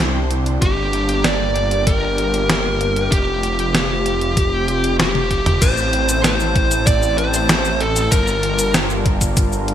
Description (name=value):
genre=synthwave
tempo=96 BPM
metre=4/4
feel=straight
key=unclear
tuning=A4 = 438 Hz
part: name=chorused pulse-width pad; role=sustained chords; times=0.0-9.7 s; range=C3 to A5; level=-24 LUFS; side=equal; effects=vintage 12-bit sampler grit, sidechain pumping
part: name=wide detuned saw bass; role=bass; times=0.0-9.7 s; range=F1 to C2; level=-21 LUFS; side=equal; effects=chorus
part: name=clean 12-bit digital drum machine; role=drums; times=0.3-9.7 s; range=cabasa, crash cymbal, hi-hat, snare drum, toms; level=-20 LUFS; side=equal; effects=gated reverb
part: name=high-gain lead guitar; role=melody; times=0.6-8.7 s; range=G4 to D5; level=-20 LUFS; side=equal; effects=distortion, ping-pong delay
part: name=electronic kick drum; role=drums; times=0.6-9.5 s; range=none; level=-18 LUFS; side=equal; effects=overdrive
room=light reverb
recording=bright 1980s-style digital production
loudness=-15 LUFS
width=side -10 dB against mid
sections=0.0-5.6 A section; 5.6-9.7 B section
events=drum fill 5.0-5.6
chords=0.0 Cadd9; 0.6 Gm; 3.1 Fsus2; 5.6 Am; 8.1 Gm7